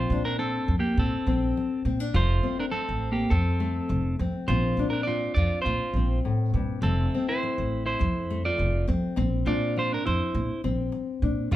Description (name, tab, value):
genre	highlife guitar band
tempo	102 BPM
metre	4/4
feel	swing 53% on 16ths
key	unclear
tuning	A4 = 440 Hz
part	clean electric guitar	melody	0.0-11.6 s	Bb3 to D5	-28 LUFS	right 1 dB	none
part	nylon-string guitar	accompaniment	0.0-11.6 s	F2 to D4	-30 LUFS	left 4 dB	none
part	upright bass	bass	0.0-11.6 s	F1 to Bb2	-26 LUFS	equal	none
room	moderate large studio reverb, RT60 0.9 s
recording	band playing live in one room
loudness	-24 LUFS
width	side -14 dB against mid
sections	0.0-11.6 A section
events	none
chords	0.0 Bbadd9; 2.1 F; 4.5 Bbadd9; 6.8 F; 9.2 Bbadd9